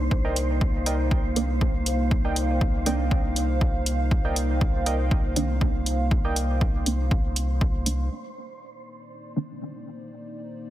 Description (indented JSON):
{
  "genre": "dub techno",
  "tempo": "120 BPM",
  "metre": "4/4",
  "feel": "swing 54% on 16ths",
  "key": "C minor",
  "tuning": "A4 = 441 Hz",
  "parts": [
    { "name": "dark analog pad", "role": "sustained chords", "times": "0.0-10.7 s", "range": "Bb3 to F5", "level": "-31 LUFS", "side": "equal", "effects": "chorus, sidechain pumping" },
    { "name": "filtered dub chord stab", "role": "stabs", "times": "0.0-9.5 s", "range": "Eb3 to D4", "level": "-32 LUFS", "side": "right 3 dB", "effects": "phaser, sidechain pumping, dub echo" },
    { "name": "pure sine sub bass", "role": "bass", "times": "0.0-8.1 s", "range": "C2", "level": "-26 LUFS", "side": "equal", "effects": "sidechain pumping" },
    { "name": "wind-like tuned noise texture", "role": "texture", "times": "0.0-8.1 s", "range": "C5", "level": "-40 LUFS", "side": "right 4 dB", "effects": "built-in reverb, sidechain pumping" },
    { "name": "electronic kick drum", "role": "drums", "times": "0.1-7.7 s", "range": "none", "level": "-24 LUFS", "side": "equal", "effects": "none" },
    { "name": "warbly lo-fi synth keys", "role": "riff", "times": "0.2-6.4 s", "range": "Bb4 to G5", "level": "-34 LUFS", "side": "right 3 dB", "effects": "chorus, sidechain pumping, dub echo" },
    { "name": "electronic hi-hat", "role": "drums", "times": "0.4-8.0 s", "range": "none", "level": "-28 LUFS", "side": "equal", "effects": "low-pass filter on hats" }
  ],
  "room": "light reverb, digital ambience",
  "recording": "dense, heavily limited modern master",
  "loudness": "-22 LUFS",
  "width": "side -13 dB against mid",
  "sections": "0.0-8.1 A section; 8.1-10.7 B section",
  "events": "filter sweep on synth stab 0.0-8.1, 8.1-10.7; filter sweep on analog synth pad 8.1-10.7",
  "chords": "0.0 Cm9"
}